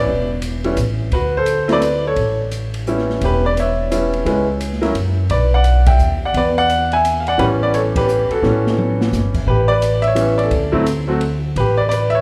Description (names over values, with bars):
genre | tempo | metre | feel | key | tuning
jazz piano trio | 172 BPM | 3/4 | swing 64% on 8ths | A mixolydian | A4 = 439 Hz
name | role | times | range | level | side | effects
clear baby grand piano | melody | 0.0-12.2 s | E3 to G#5 | -19 LUFS | equal | none
upright bass | bass | 0.0-12.2 s | E1 to F#2 | -21 LUFS | equal | none
open jazz drum kit | drums | 0.4-12.0 s | crash cymbal, hi-hat, kick drum, ride cymbal, snare drum, toms | -29 LUFS | equal | none
room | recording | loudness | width
wet recital hall reverb, RT60 1.7 s | recorded in a church or concert hall | -17 LUFS | mono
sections
0.0-9.5 A section; 9.5-12.2 A section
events
band accent 5.8, 7.9; drum fill 8.4-9.1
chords
0.1 E5; 0.8 N.C.; 1.1 D7; 2.2 A9; 4.3 C#m7; 5.0 N.C.; 5.3 Bm; 6.3 Esus2; 7.4 A9; 10.5 D7; 11.6 A7sus2